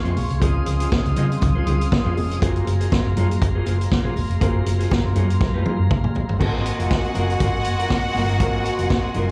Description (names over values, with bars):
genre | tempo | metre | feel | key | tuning
disco | 120 BPM | 4/4 | straight | unclear | A4 = 439 Hz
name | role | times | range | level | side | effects
mellow electric guitar | accompaniment | 0.0-9.3 s | Gb3 to Eb5 | -32 LUFS | equal | slapback echo
warm concert grand piano | accompaniment | 0.0-9.3 s | F3 to Bb4 | -33 LUFS | equal | slapback echo
mellow tonewheel organ | sustained chords | 0.0-9.3 s | Ab4 to Eb6 | -33 LUFS | equal | slow rotary speaker
hollow-body short-scale fingered electric bass | bass | 0.1-9.3 s | Fb1 to Db3 | -24 LUFS | equal | none
vintage drum kit | drums | 0.1-9.3 s | crash cymbal, hi-hat, kick drum, snare drum, toms | -25 LUFS | equal | none
congas | percussion | 0.2-9.3 s | none | -33 LUFS | equal | none
clear studio string section | second line | 6.4-9.3 s | Gb4 to Gb5 | -28 LUFS | equal | slapback echo
room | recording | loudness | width
light reverb | live gig heard through the venue's PA, club reverb | -21 LUFS | mono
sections
0.0-6.4 A section; 6.4-9.3 B section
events
drum fill 5.4-6.4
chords
0.0 Dbmaj7; 2.4 Gbmaj9#11; 6.4 Ab13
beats
| 0.42 0.92 1.42 1.91 | 2.41 2.91 3.41 3.91 | 4.41 4.91 5.41 5.91 | 6.41 6.91 7.40 7.90 | 8.40 8.90